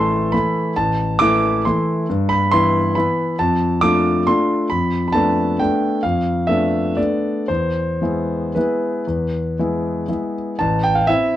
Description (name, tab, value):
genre	classical, piano waltz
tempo	110-146 BPM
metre	3/4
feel	rubato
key	A minor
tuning	A4 = 440 Hz
part	clear concert grand piano	solo	0.0-11.4 s	A1 to D6	-16 LUFS	equal	none
room	light reverb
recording	worn, warbling old tape, cassette tape, warbly pitch drift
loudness	-16 LUFS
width	side -12 dB against mid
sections	0.0-10.6 A section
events	none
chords	0.0 Am; 2.1 Em/G; 3.4 Dm/F; 4.7 Bm7b5/F; 7.5 E; 10.6 Am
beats	0.33 | 0.76 1.19 1.64 | 2.08 2.51 2.95 | 3.38 3.80 4.25 | 4.70 5.14 5.59 | 6.04 6.49 6.98 | 7.49 8.02 8.56 | 9.08 9.58 10.09 | 10.59 11.07